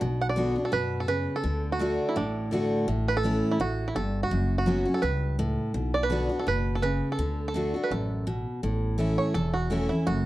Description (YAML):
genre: bluegrass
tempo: 167 BPM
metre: 4/4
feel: swing 54% on 8ths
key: B minor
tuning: A4 = 438 Hz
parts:
  - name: picked steel-string acoustic guitar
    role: accompaniment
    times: 0.0-10.3 s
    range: E2 to F#4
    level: -28 LUFS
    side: equal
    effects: none
  - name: upright bass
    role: bass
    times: 0.0-10.3 s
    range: E1 to F#2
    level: -30 LUFS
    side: equal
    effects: none
  - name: bluegrass banjo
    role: melody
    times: 0.2-10.3 s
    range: D4 to F#5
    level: -30 LUFS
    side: right 3 dB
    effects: none
room: studio reverb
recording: dry, close 1970s-style studio recording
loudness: -25 LUFS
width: side -16 dB against mid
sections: 0.0-10.3 A section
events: five-string banjo solo 0.0-10.3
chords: 0.0 Bm; 1.4 D; 2.9 A; 4.3 F#sus4; 5.7 Bm; 7.2 D; 8.6 A